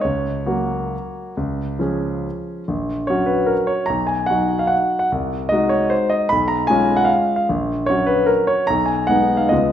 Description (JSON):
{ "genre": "classical, piano waltz", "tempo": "126-160 BPM", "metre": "3/4", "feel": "rubato", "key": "F# major", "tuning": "A4 = 439 Hz", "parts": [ { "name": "warm grand piano", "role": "solo", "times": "0.0-9.7 s", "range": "A#1 to B5", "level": "-17 LUFS", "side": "equal", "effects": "none" } ], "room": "moderate recital hall reverb, RT60 1.4 s", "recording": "recorded in a church or concert hall", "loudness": "-17 LUFS", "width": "side -10 dB against mid", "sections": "0.0-9.7 A section", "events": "none", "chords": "0.0 F#/C#; 1.4 C#; 2.7 F#/A#; 3.9 B; 5.1 G#7/B#; 6.3 C#7/B; 7.5 F#/A#; 8.7 G#m/B", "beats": "| 0.05 0.48 0.93 | 1.39 1.82 2.26 | 2.69 3.10 3.52 | 3.92 4.31 4.72 | 5.11 5.51 5.92 | 6.31 6.69 7.09 | 7.49 7.88 8.30 | 8.69 9.08 9.52" }